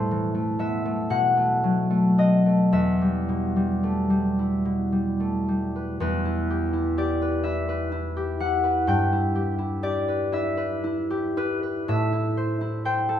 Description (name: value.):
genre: classical, solo harp piece.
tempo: 35-43 BPM (dotted quarters).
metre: 6/8.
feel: rubato.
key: E minor.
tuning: A4 = 439 Hz.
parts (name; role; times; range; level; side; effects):
concert harp; solo; 0.0-13.2 s; E2 to G5; -22 LUFS; left 1 dB; none.
room: wet stone room reverb, RT60 1.3 s.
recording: minimal, uncompressed stereo recording.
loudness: -22 LUFS.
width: side -10 dB against mid.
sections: 0.0-6.0 A section; 6.0-13.2 A section.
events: none.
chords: 0.0 Am; 1.1 B5; 2.7 Em; 8.9 Em/G; 11.9 Am.